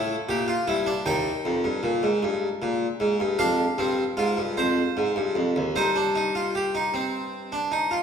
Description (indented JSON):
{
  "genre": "classical, baroque-style 3-part fugue for harpsichord",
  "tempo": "51 BPM (dotted quarters)",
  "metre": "12/8",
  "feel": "straight",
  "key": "C minor",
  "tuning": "A4 = 440 Hz",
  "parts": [
    { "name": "harpsichord", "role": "solo", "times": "0.0-8.0 s", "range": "Eb2 to G5", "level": "-22 LUFS", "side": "equal", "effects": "none" }
  ],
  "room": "wet recital hall reverb, RT60 1.8 s",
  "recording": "heard from further back in the room",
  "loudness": "-22 LUFS",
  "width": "side -7 dB against mid",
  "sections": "0.0-8.0 A section",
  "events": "none",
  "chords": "0.0 Gm; 1.1 Eb; 3.4 Fm; 5.7 Cm/G"
}